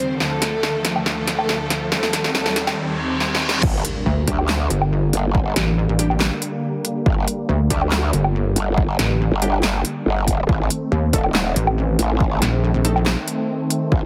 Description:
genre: heavy wobble dubstep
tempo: 140 BPM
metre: 4/4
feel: half-time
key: unclear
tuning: A4 = 440 Hz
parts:
  - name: warm chamber violin section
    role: melody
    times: 0.0-2.8 s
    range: A3 to C5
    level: -28 LUFS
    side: equal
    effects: tape echo
  - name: supersaw chords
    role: sustained chords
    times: 0.0-14.1 s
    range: D2 to C4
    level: -28 LUFS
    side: equal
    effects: vintage 12-bit sampler grit, sidechain pumping, low-pass filter
  - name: riser, reverse cymbal and impact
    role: sound effects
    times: 0.0-5.3 s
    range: none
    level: -31 LUFS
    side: equal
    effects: none
  - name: big-room dance drum kit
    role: drums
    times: 0.2-13.8 s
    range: crash cymbal, handclaps, hi-hat, snare drum, woodblock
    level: -25 LUFS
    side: equal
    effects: high-pass filter on hats, high-pass filter on snare, high-pass filter on perc, high-pass filter on cymbals, high-pass filter on room
  - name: growl bass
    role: bass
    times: 3.6-14.1 s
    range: Eb1 to D2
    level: -23 LUFS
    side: equal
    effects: chorus, overdrive
  - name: electronic kick drum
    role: drums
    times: 3.6-14.0 s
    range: none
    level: -22 LUFS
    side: equal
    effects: none
  - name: pulsing pluck wobble bass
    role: bass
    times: 4.1-13.2 s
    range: G1 to Eb2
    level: -21 LUFS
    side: equal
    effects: chorus, overdrive
  - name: orchestra-hit-like synth stab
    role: stabs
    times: 4.3-12.9 s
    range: G3 to A4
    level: -32 LUFS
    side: equal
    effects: none
room: moderate plate reverb, RT60 2.2 s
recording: heavily compressed radio sound, multiband compression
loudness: -20 LUFS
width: mono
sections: 0.0-3.6 A section; 3.6-14.1 B section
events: build-up 0.0-3.6; drum fill 0.0-2.8, 3.2-3.6; reverse cymbal 2.8-3.6; drop 3.6-14.1; impact 3.6-5.3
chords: 0.2 Dm; 1.9 Cm/Eb; 3.6 Gm; 10.5 Adim

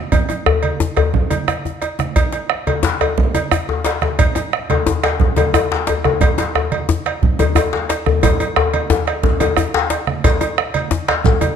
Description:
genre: west african traditional, West African drum ensemble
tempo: 119 BPM (dotted quarters)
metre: 12/8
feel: straight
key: none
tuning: none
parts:
  - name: bombo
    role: percussion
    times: 0.1-11.5 s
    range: none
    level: -19 LUFS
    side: right 3 dB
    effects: none
  - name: congas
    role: percussion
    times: 0.1-11.6 s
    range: none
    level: -23 LUFS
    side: right 6 dB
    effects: none
  - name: cowbell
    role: percussion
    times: 0.1-11.6 s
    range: none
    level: -23 LUFS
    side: right 6 dB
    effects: none
  - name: djembe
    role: percussion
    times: 0.1-11.6 s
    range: none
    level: -21 LUFS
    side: left 6 dB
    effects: none
  - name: djembe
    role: percussion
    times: 0.5-11.4 s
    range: none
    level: -18 LUFS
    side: left 6 dB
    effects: none
  - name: shekere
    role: percussion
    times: 10.3-11.4 s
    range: none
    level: -26 LUFS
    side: left 2 dB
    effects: none
room: moderate recital hall reverb, RT60 1.5 s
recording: close, detailed microphones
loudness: -14 LUFS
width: side -7 dB against mid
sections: 0.0-10.2 A section; 10.2-11.6 B section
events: drum fill 1.5-2.2, 8.2-10.2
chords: none

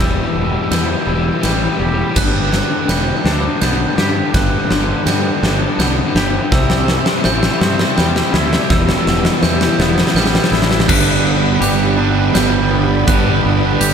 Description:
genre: post-rock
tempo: 83 BPM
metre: 3/4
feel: straight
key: G major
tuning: A4 = 442 Hz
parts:
  - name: warm studio string section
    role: sustained chords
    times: 0.0-13.9 s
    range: D3 to B5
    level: -28 LUFS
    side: right 3 dB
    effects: none
  - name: glockenspiel with hard plastic mallets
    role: arpeggios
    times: 0.0-13.9 s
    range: E6 to G6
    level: -24 LUFS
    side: right 6 dB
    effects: tape echo, slapback echo
  - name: twangy electric guitar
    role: arpeggios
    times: 0.0-13.9 s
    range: E2 to G4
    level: -22 LUFS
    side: equal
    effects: tape echo, slapback echo
  - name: crunchy overdriven guitar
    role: riff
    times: 0.0-13.9 s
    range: G2 to D4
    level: -19 LUFS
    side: left 6 dB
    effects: slapback echo
  - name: fuzz fingered electric bass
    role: bass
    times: 0.0-13.9 s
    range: E1 to G2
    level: -19 LUFS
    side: equal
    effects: overdrive
  - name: huge arena drum kit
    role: drums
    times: 0.7-13.9 s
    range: crash cymbal, hi-hat, kick drum, ride cymbal, snare drum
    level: -17 LUFS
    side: equal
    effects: none
  - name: sludgy distorted guitar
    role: riff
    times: 10.9-13.9 s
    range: G2 to D4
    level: -18 LUFS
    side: right 13 dB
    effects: overdrive
room: moderate lush hall reverb, RT60 2.8 s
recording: big arena sound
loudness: -12 LUFS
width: side -7 dB against mid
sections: 0.0-10.9 A section; 10.9-13.9 B section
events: build-up 0.0-10.9; drum fill 0.0-10.9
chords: 0.0 Em; 2.2 G; 6.5 C; 8.7 Em; 10.9 G

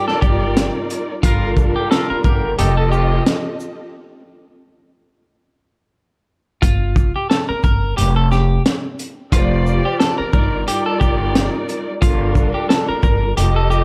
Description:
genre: hip hop, boom-bap hip-hop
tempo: 89 BPM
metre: 4/4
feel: swing 56% on 16ths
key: G minor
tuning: A4 = 442 Hz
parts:
  - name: clean electric guitar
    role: melody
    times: 0.0-13.8 s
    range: F4 to Bb4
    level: -24 LUFS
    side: equal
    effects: lush chorus, high-pass filter, low-pass filter, slapback echo
  - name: warm studio string section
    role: accompaniment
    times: 0.0-3.8, 9.3-13.8 s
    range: F3 to Eb5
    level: -25 LUFS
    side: equal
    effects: high-pass filter, low-pass filter
  - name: crunchy breakbeat drum kit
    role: drums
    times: 0.1-13.8 s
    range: hi-hat, kick drum, shaker, snare drum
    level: -20 LUFS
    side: equal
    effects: none
  - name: upright bass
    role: bass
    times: 0.2-13.8 s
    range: F1 to G1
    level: -21 LUFS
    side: equal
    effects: none
  - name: warm horn section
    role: stabs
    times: 1.2-3.2 s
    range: C3 to Bb4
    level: -30 LUFS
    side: equal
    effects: high-pass filter, low-pass filter, slapback echo
room: studio ambience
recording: none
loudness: -17 LUFS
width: mono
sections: 0.0-6.6 A section; 6.6-13.8 A section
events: break 3.9-6.6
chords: 0.0 Ebmaj7/G; 1.2 Gm7; 2.6 F7; 3.9 N.C.; 6.6 Gm7; 8.0 Fsus2; 10.3 Ebmaj7/G; 12.0 Gm7

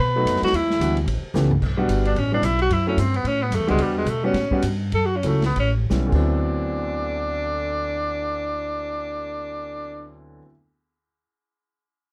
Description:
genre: jazz, small-group swing and bop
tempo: 154-221 BPM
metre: 4/4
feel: swing 59% on 8ths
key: D mixolydian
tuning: A4 = 444 Hz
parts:
  - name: clear tenor saxophone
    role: melody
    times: 0.0-10.2 s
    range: G3 to B4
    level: -26 LUFS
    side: equal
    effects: none
  - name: upright bass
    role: bass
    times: 0.0-10.4 s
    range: G1 to B2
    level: -26 LUFS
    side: equal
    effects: none
  - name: clear upright piano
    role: accompaniment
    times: 0.2-10.5 s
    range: D2 to G4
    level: -29 LUFS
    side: equal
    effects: none
  - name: open jazz drum kit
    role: drums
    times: 0.3-6.2 s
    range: crash cymbal, hi-hat, kick drum, ride cymbal, snare drum, toms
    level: -34 LUFS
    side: equal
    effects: none
room: light reverb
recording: none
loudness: -22 LUFS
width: mono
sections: 0.0-1.6 A section; 1.6-6.3 B section; 6.3-9.4 C section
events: drum fill 1.3, 5.9-6.3; slowing down 3.8-6.3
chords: 0.0 B7; 0.5 Em7; 1.1 A7; 1.6 Gmaj7; 2.2 A9; 2.7 F#m7; 3.2 A13; 3.8 Em9; 4.3 A13; 4.9 F#m7; 5.6 A9; 6.1 D13

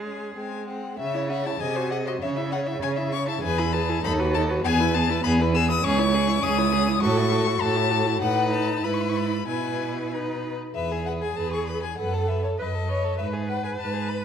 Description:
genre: quick classical-period movement for string quartet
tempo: 92-102 BPM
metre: 2/4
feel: rubato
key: C# minor, E major from 5.8 s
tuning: A4 = 443 Hz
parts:
  - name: rich violin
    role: melody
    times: 0.0-14.2 s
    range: C#5 to E6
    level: -28 LUFS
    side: left 8 dB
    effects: none
  - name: rich violin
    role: second line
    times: 0.0-14.2 s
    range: B#3 to E5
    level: -30 LUFS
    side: left 3 dB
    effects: none
  - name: warm viola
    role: accompaniment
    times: 0.0-14.2 s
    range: G#3 to C#5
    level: -29 LUFS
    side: right 1 dB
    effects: none
  - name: clear cello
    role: bass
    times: 0.0-14.2 s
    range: C#2 to G#4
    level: -26 LUFS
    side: right 4 dB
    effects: none
room: moderate recital hall reverb, RT60 1.5 s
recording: none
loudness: -22 LUFS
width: side -8 dB against mid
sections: 1.0-10.8 A section; 10.8-14.2 B section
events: none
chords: 0.4 G#; 1.0 C#m; 1.6 G#7/B#; 2.2 C#m; 3.4 E; 4.0 B7/D#; 4.6 E; 5.8 C#m; 7.0 F#m7/A; 8.2 B7/A; 8.8 E/G#; 9.5 E/B; 10.1 B; 10.8 E; 12.0 B7/F#; 13.2 G#m

